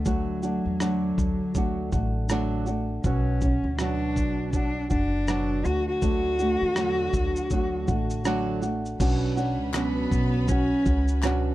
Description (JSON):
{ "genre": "acoustic pop", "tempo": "81 BPM", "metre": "4/4", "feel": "swing 60% on 16ths", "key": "B minor", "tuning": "A4 = 440 Hz", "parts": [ { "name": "dark cello", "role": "melody", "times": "0.0-11.2 s", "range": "F#3 to F#4", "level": "-28 LUFS", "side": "left 1 dB", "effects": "none" }, { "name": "flamenco guitar", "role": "accompaniment", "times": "0.0-11.5 s", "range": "B2 to F#4", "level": "-28 LUFS", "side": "right 2 dB", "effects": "none" }, { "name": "upright bass", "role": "bass", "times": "0.0-11.5 s", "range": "F#1 to E2", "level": "-28 LUFS", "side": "equal", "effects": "none" }, { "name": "dusty soul sampler-style drum kit", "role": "drums", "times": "0.1-11.4 s", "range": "crash cymbal, kick drum, rim click, shaker", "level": "-28 LUFS", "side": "equal", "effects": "none" }, { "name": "clear studio string section", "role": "sustained chords", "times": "9.0-11.5 s", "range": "F#4 to B5", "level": "-40 LUFS", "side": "left 3 dB", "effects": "none" }, { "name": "group handclap", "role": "percussion", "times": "9.7-11.4 s", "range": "none", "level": "-38 LUFS", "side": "left 6 dB", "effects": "none" } ], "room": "little or no reverb", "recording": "dark, warm production", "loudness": "-23 LUFS", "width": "side -15 dB against mid", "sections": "0.0-9.0 A section; 9.0-11.5 B section", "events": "none", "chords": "0.0 D; 3.0 Bmadd9; 5.7 D; 9.0 Bmadd9" }